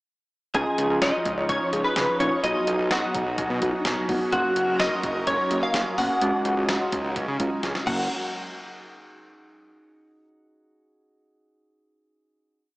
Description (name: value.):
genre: synth-pop.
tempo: 127 BPM.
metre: 4/4.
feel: straight.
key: unclear.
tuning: A4 = 440 Hz.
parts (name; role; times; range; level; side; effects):
direct-recorded clean electric guitar; melody; 0.5-8.1 s; F#4 to F#5; -26 LUFS; left 1 dB; ensemble chorus, diffuse ambient delay.
muted felt-like synth keys; accompaniment; 0.5-8.1 s; G#3 to G#4; -28 LUFS; equal; chorus, phaser.
phased string machine; sustained chords; 0.5-8.1 s; C#3 to A#4; -32 LUFS; equal; ensemble chorus, phaser.
hammered dulcimer; arpeggios; 0.5-9.1 s; F#3 to G#4; -32 LUFS; right 1 dB; diffuse ambient delay.
fat analog bass; bass; 0.5-8.1 s; E#1 to C#3; -30 LUFS; equal; none.
clean 12-bit digital drum machine; drums; 0.5-8.0 s; crash cymbal, hi-hat, kick drum, snare drum; -30 LUFS; equal; none.
room: wet plate reverb, RT60 2.0 s, digital ambience.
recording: dreamy mix soaked in reverb, small speaker sound.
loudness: -22 LUFS.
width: side -21 dB against mid.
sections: 0.5-8.1 pre-chorus; 8.1-10.0 final hit.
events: drum fill 7.6-8.1.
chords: 0.5 C#add9; 2.4 B; 4.3 F#; 6.2 C#sus4; 7.9 F#; 8.1 N.C..